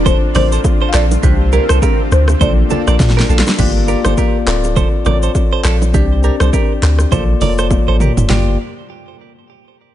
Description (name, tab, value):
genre	afrobeats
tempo	102 BPM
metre	4/4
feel	swing 58% on 16ths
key	G minor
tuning	A4 = 441 Hz
part	folk marimba with medium mallets	melody	0.0-3.3 s	Bb4 to F5	-21 LUFS	left 1 dB	digital delay
part	mellow tine electric piano	accompaniment	0.0-8.6 s	Bb3 to D5	-20 LUFS	left 8 dB	none
part	granular cloud pad	sustained chords	0.0-3.6 s	D3 to F4	-24 LUFS	right 1 dB	built-in reverb
part	punchy sub bass	bass	0.0-8.6 s	D1 to Bb2	-14 LUFS	equal	none
part	direct-recorded clean electric guitar	riff	0.1-8.6 s	D4 to D5	-22 LUFS	right 12 dB	spring reverb, digital delay
part	deep house drum kit	drums	0.1-8.5 s	crash cymbal, handclaps, hi-hat, kick drum, rim click, shaker, snare drum, toms	-16 LUFS	equal	none
part	congas and bongos	percussion	0.1-8.6 s	none	-24 LUFS	right 6 dB	none
room	little or no reverb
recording	nothing above 10.8 kHz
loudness	-11 LUFS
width	side -12 dB against mid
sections	0.0-3.6 A section; 3.6-8.3 B section; 8.3-9.9 C section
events	drum fill 3.0-3.6, 7.7-8.3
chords	0.0 Dm7; 1.2 Csus2; 2.4 Bbmaj7; 3.6 Gm7; 4.5 Dm7; 5.9 Csus2; 7.1 Bbmaj7; 8.3 Gm7